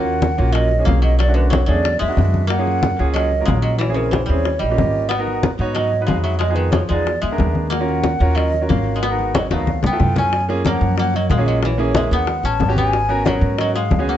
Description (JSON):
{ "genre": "Afro-Cuban jazz", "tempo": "184 BPM", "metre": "4/4", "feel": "straight", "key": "Eb minor", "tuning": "A4 = 440 Hz", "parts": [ { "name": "mellow hollow concert flute", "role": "melody", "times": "0.0-14.2 s", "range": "Bb4 to A5", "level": "-22 LUFS", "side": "right 1 dB", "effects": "none" }, { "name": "koto", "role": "second line", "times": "0.0-14.2 s", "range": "Db3 to Db4", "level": "-25 LUFS", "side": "left 1 dB", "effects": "tape echo" }, { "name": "clear concert grand piano", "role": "accompaniment", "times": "0.0-14.2 s", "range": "F3 to Db5", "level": "-24 LUFS", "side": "right 2 dB", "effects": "none" }, { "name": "upright bass", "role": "bass", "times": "0.0-14.2 s", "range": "Ab1 to Ab2", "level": "-19 LUFS", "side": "equal", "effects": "none" }, { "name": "bongos", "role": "percussion", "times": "0.1-14.1 s", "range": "none", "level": "-26 LUFS", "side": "left 6 dB", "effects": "none" }, { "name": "congas", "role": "percussion", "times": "0.1-14.2 s", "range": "none", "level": "-22 LUFS", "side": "left 1 dB", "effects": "none" } ], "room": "moderate studio reverb, RT60 0.6 s", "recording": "dark, warm production, nothing above 8.0 kHz", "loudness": "-15 LUFS", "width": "side -11 dB against mid", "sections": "0.0-10.3 A section; 10.3-14.2 B section", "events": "drum fill 9.4-10.3", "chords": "0.0 Ebm7; 1.2 Bm7; 1.9 E9; 2.5 Gbmaj9; 3.8 Bbm7b5; 4.5 Eb7; 5.1 Abm7; 6.4 Fm7b5; 7.1 E7#11; 7.7 Ebm7; 9.0 Abm7; 9.7 Db7alt; 10.3 Gbmaj9; 11.6 Bbm7b5; 12.3 Eb7alt; 12.9 Abm11" }